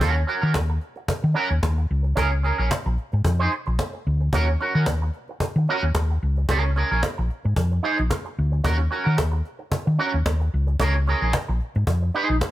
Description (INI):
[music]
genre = disco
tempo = 111 BPM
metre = 4/4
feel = straight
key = Eb dorian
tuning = A4 = 439 Hz
[part]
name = electric guitar with an envelope filter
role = accompaniment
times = 0.0-12.5 s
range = Db4 to C5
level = -25 LUFS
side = right 3 dB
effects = lush chorus
[part]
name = hollow-body short-scale fingered electric bass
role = bass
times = 0.0-12.4 s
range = Bb1 to Eb3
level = -21 LUFS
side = equal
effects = none
[part]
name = cajon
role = drums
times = 0.0-12.5 s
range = none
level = -26 LUFS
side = equal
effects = none
[sound]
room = studio reverb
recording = none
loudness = -20 LUFS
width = side -15 dB against mid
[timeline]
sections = 0.0-12.5 A section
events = none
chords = 0.0 Ebm7; 1.9 Bbm7/Db; 3.2 Fm7; 4.3 Ebm7; 6.2 Bbm7/Db; 7.6 Fm7; 8.6 Ebm7; 10.5 Bbm7/Db; 11.9 Fm7